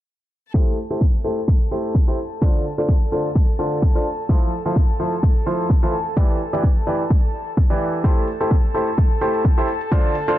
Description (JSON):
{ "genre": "piano house", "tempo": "128 BPM", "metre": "4/4", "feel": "swing 55% on 16ths", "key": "A minor", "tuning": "A4 = 441 Hz", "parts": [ { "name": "clear studio string section", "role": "sustained chords", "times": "0.5-10.4 s", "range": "A4 to A5", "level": "-30 LUFS", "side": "left 1 dB", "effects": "sidechain pumping" }, { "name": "bright baby grand piano", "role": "riff", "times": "0.5-10.4 s", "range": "D3 to D5", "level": "-22 LUFS", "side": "equal", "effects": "sidechain pumping, low-pass filter, tape echo" }, { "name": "electronic kick drum", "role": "drums", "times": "0.5-10.0 s", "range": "none", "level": "-16 LUFS", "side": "equal", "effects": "overdrive, studio reverb" }, { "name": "electronic hi-hat", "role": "drums", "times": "8.0-10.4 s", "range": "none", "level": "-52 LUFS", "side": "left 3 dB", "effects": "none" } ], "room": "small room ambience", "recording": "low-pass filter", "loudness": "-17 LUFS", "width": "side -14 dB against mid", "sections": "0.5-10.4 A section", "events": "filter sweep on grand piano 0.5-10.4; filter sweep 0.5-10.4", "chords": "0.5 Am7; 2.2 Dm7; 4.1 Fmaj7; 5.9 Em7; 8.0 Am7; 9.7 Dm7" }